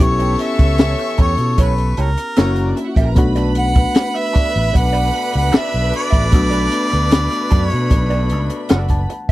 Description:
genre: lush 1970s-style soul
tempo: 76 BPM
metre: 4/4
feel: straight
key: B minor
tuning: A4 = 439 Hz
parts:
  - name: warm harmonica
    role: melody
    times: 0.0-8.7 s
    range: A#4 to F#5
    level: -21 LUFS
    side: equal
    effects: none
  - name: rich studio string section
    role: second line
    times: 0.0-9.1 s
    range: B3 to C#6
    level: -27 LUFS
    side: right 1 dB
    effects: none
  - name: reed electric piano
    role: accompaniment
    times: 0.0-9.3 s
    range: A3 to A5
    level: -23 LUFS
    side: left 2 dB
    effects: none
  - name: electric guitar through a small old amp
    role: riff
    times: 0.0-9.3 s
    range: A3 to E5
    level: -27 LUFS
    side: right 6 dB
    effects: wah
  - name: clear horn section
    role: stabs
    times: 0.0-9.1 s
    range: B2 to A4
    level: -26 LUFS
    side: left 6 dB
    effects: none
  - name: fingered electric bass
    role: bass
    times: 0.0-9.3 s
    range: F#1 to B2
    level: -18 LUFS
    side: equal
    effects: none
  - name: compact cocktail drum kit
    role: drums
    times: 0.0-9.3 s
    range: hi-hat, kick drum, snare drum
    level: -14 LUFS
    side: equal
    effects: none
room: little or no reverb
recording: dry, close 1970s-style studio recording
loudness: -14 LUFS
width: side -17 dB against mid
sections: 0.0-9.3 A section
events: reed electric piano fill 8.3-9.3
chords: 0.0 A7/B; 2.4 F#7; 3.2 Bm7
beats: | 0.00 0.79 1.58 2.37 | 3.17 3.96 4.75 5.54 | 6.33 7.12 7.91 8.70

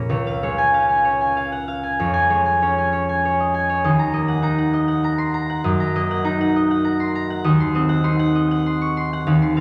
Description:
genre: classical, solo harp piece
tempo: 89-103 BPM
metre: 3/4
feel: rubato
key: Db major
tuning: A4 = 440 Hz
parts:
  - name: concert harp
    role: solo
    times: 0.0-9.6 s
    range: Bb1 to Db6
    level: -20 LUFS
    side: equal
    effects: none
room: wet recital hall reverb, RT60 1.6 s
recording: none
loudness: -20 LUFS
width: mono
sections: 0.1-9.6 A section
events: none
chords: 0.1 Db; 2.0 Db/F; 3.9 Ebm; 5.7 Ebm/Gb; 7.4 Cdim/Eb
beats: | 0.09 0.73 1.37 | 2.00 2.63 3.25 | 3.85 4.44 5.05 | 5.66 6.26 6.85 | 7.45 8.04 8.65 | 9.26

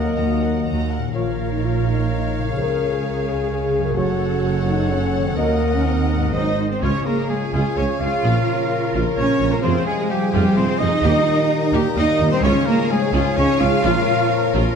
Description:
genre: cinematic, heroic adventure film score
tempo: 128 BPM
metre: 3/4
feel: straight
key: Db lydian from 6.8 s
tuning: A4 = 437 Hz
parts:
  - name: rich symphonic violin section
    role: melody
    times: 0.0-14.5 s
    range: G4 to Bb5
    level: -30 LUFS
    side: left 5 dB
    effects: none
  - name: clear oboe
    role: second line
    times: 0.0-14.5 s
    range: G4 to F5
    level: -32 LUFS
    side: right 1 dB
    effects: none
  - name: clear studio violin section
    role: second line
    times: 0.0-14.8 s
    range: Ab4 to Bb5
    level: -32 LUFS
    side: left 2 dB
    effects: none
  - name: mellow clarinet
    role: second line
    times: 0.0-6.6 s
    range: Ab4 to C5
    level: -32 LUFS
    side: left 4 dB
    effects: none
  - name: mellow hollow silver concert flute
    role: second line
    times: 0.0-14.5 s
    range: F5 to F6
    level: -33 LUFS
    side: left 2 dB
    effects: none
  - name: clear symphonic viola section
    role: accompaniment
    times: 0.0-14.8 s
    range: Ab3 to C5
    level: -30 LUFS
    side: left 1 dB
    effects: none
  - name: clear trombone section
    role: sustained chords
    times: 0.0-14.8 s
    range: F2 to C4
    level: -31 LUFS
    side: right 3 dB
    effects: none
  - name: dark French horn section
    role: sustained chords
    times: 0.0-14.8 s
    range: Ab3 to Db5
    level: -25 LUFS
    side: left 4 dB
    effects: none
  - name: concert harp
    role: arpeggios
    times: 0.0-14.8 s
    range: Gb2 to Db6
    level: -27 LUFS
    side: left 10 dB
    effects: none
  - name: dark trumpet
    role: stabs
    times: 0.0-14.5 s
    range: G4 to F5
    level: -27 LUFS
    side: right 5 dB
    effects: none
  - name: rich symphonic cello section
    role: bass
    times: 0.0-14.5 s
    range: Eb2 to F4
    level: -24 LUFS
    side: right 1 dB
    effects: none
  - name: rich symphonic double bass section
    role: bass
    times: 0.0-14.6 s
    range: Gb1 to F2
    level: -23 LUFS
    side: right 3 dB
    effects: none
  - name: mellow tuba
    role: bass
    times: 6.8-14.6 s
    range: F1 to Eb2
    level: -26 LUFS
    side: right 3 dB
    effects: none
room: moderate scoring stage reverb, RT60 1.9 s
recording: dark, warm production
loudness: -17 LUFS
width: side -6 dB against mid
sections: 0.0-6.8 A section; 6.8-14.8 B section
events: none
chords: 0.0 Ebm; 1.1 Bbm; 2.6 Db; 4.0 Gbm; 5.4 Ebm; 6.3 Ab7; 6.8 Db; 8.2 Bbm; 9.6 Fm; 11.0 Eb; 12.4 Db; 13.8 Bbm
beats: 0.18 0.67 | 1.15 1.62 2.09 | 2.56 3.03 3.50 | 3.97 4.43 4.90 | 5.37 5.85 6.33 | 6.82 7.30 7.77 | 8.24 8.71 9.18 | 9.64 10.11 10.57 | 11.04 11.50 11.97 | 12.43 12.90 13.37 | 13.84 14.31

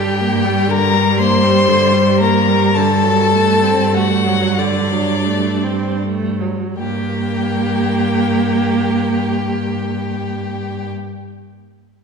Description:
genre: classical, slow romantic movement for string quartet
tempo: 25-43 BPM (dotted quarters)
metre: 6/8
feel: rubato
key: G minor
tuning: A4 = 441 Hz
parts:
  - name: dark violin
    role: melody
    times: 0.0-10.9 s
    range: D5 to C6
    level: -20 LUFS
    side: left 6 dB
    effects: none
  - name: rich violin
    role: second line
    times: 0.0-10.9 s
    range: D4 to C5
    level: -21 LUFS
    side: left 1 dB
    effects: none
  - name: rich viola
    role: accompaniment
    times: 0.0-10.9 s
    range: D3 to C4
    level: -20 LUFS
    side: right 2 dB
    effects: none
  - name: rich cello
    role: bass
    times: 0.0-10.9 s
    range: G2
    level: -18 LUFS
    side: right 1 dB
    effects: none
room: wet scoring stage reverb, RT60 1.8 s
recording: recorded in a church or concert hall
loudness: -13 LUFS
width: side -5 dB against mid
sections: 0.0-6.8 A section; 6.8-10.9 B section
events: slowing down 0.0-6.8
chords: 0.0 Gm; 2.8 D7/G; 6.8 Gm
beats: 1.20 | 2.78 4.59 | 6.77 8.83

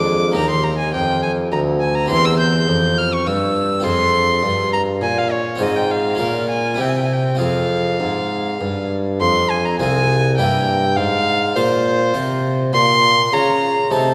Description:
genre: classical, baroque-style sonata movement with continuo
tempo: 102 BPM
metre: 3/4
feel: straight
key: F minor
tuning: A4 = 440 Hz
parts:
  - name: rich violin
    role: melody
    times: 0.0-14.1 s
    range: C5 to G6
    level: -21 LUFS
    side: equal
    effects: none
  - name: harpsichord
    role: accompaniment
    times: 0.0-14.1 s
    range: C2 to Db5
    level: -23 LUFS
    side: equal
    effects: none
  - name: warm bassoon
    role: bass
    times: 0.0-14.1 s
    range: C2 to Db3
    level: -23 LUFS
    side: equal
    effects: none
room: wet concert hall reverb, RT60 2.3 s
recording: recorded in a church or concert hall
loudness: -18 LUFS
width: mono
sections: 0.0-9.2 A section; 9.2-14.1 B section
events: none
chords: 0.4 Eb; 2.1 C7/E; 3.9 Fm; 5.6 Fm/Ab; 6.2 Bbm; 6.8 C; 7.4 Fm; 10.4 Edim/G; 11.0 Fm/Ab; 12.7 Bbm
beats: | 0.35 0.94 1.51 | 2.10 2.68 3.27 | 3.85 4.43 5.02 | 5.61 6.20 6.79 | 7.39 8.00 8.61 | 9.21 9.80 10.39 | 10.98 11.56 12.15 | 12.74 13.33 13.91

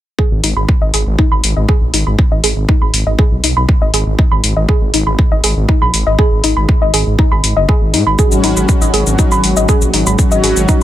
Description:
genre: melodic techno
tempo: 120 BPM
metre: 4/4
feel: straight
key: G# minor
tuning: A4 = 445 Hz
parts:
  - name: woody wave-folded pluck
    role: arpeggios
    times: 0.2-10.7 s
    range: D#4 to B5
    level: -17 LUFS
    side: equal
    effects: chorus, sidechain pumping, tape echo
  - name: electronic kick drum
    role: drums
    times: 0.2-10.8 s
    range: none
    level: -12 LUFS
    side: equal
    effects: none
  - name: swelling detuned saw bass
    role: bass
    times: 0.3-10.7 s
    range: F#1 to G#2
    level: -15 LUFS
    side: equal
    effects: sidechain pumping
  - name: electronic hi-hat and shaker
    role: drums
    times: 0.4-10.8 s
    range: none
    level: -16 LUFS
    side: left 2 dB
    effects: sidechain pumping on hats, sidechain pumping on perc
  - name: brassy analog pad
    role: stabs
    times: 8.2-10.8 s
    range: F#3 to F#4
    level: -16 LUFS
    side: left 1 dB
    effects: chorus, sidechain pumping, tape echo
room: little or no reverb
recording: none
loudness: -10 LUFS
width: side -13 dB against mid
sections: 0.2-10.8 A section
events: filter sweep on synth pluck 0.2-10.8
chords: 0.2 G#m; 8.2 F#5/G#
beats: | 0.19 0.69 1.19 1.69 | 2.19 2.69 3.19 3.69 | 4.19 4.69 5.19 5.69 | 6.19 6.69 7.19 7.69 | 8.19 8.69 9.19 9.69 | 10.19 10.69

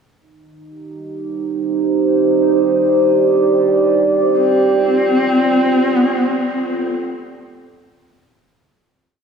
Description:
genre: dark ambient drone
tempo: 57 BPM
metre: 4/4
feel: straight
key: C dorian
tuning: A4 = 439 Hz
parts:
  - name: dark analog pad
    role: sustained chords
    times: 0.2-8.7 s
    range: Eb4 to D5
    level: -15 LUFS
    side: right 2 dB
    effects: wide subtle chorus, shimmer reverb
  - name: rich horsehead fiddle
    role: melody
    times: 4.4-7.5 s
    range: C4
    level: -16 LUFS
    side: left 2 dB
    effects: shimmer reverb, diffuse ambient delay
room: wet huge ambient reverb, RT60 8.1 s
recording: small room ambience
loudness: -13 LUFS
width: side -6 dB against mid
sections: 0.2-8.7 A section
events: fade-out 4.4-8.7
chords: 0.2 Cm; 4.4 Fadd9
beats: | 0.16 1.23 2.29 3.35 | 4.40 5.45 6.51 7.58

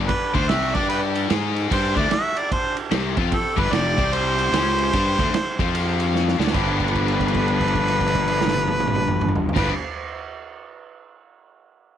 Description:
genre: blues rock power trio and southern rock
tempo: 149 BPM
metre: 4/4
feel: swing 63% on 8ths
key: G mixolydian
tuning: A4 = 438 Hz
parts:
  - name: cranked stack guitar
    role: riff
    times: 0.0-9.7 s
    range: F2 to Ab4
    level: -25 LUFS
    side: left 12 dB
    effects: overdrive
  - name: fuzz fingered electric bass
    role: bass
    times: 0.0-9.7 s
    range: F1 to Ab2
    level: -24 LUFS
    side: equal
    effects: overdrive
  - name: clear harmonica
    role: melody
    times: 0.1-9.7 s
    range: A4 to E5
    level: -24 LUFS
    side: equal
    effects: overdrive
  - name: biting lead guitar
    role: second line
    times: 0.1-9.7 s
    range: C4 to G4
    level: -31 LUFS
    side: right 13 dB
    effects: overdrive
  - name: vintage drum kit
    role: drums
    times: 0.1-9.7 s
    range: crash cymbal, kick drum, ride cymbal, snare drum, toms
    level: -25 LUFS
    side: right 3 dB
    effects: none
room: small room ambience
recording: 1960s-style stereo with parts hard left and right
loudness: -18 LUFS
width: side -10 dB against mid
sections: 0.0-6.5 A section; 6.5-9.8 B section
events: drum fill 6.1-6.5; held note 6.5-9.5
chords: 0.3 D7; 0.7 G5; 1.3 Ab5; 1.7 D5; 3.5 G7; 3.9 C5; 4.5 C#5; 4.9 D5; 5.5 F5; 6.3 D5; 6.5 G7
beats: | 0.09 0.50 0.90 1.30 | 1.71 2.11 2.51 2.92 | 3.32 3.72 4.12 4.53 | 4.93 5.33 5.74 6.14 | 6.54 6.94 7.34 7.75 | 8.15 8.55 8.95 9.35

